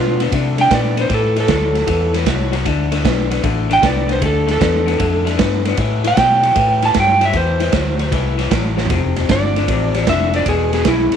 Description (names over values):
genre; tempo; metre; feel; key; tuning
electric blues shuffle; 154 BPM; 4/4; swing 68% on 8ths; A minor; A4 = 440 Hz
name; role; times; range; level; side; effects
electric slide guitar; melody; 0.0-11.1 s; E4 to A5; -17 LUFS; right 2 dB; none
electric guitar through a small old amp; riff; 0.0-11.2 s; E2 to B3; -21 LUFS; left 14 dB; none
vintage muted fingered electric bass; bass; 0.0-11.1 s; E1 to C3; -20 LUFS; left 1 dB; none
raw garage drum kit; drums; 0.2-11.2 s; kick drum, ride cymbal, snare drum, toms; -20 LUFS; right 5 dB; none
room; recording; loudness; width
light reverb, studio reverb; 1960s-style stereo; -13 LUFS; side -8 dB against mid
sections
0.0-11.2 A section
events
drum fill 8.7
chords
0.0 D7(no3); 1.1 Am; 2.7 Dm7; 5.8 Am7; 8.9 F; 10.5 E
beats
0.32 0.71 | 1.09 1.48 1.87 2.26 | 2.65 3.04 3.43 3.82 | 4.21 4.61 5.00 5.39 | 5.78 6.17 6.56 6.95 | 7.34 7.73 8.12 8.51 | 8.90 9.29 9.68 10.07 | 10.46 10.85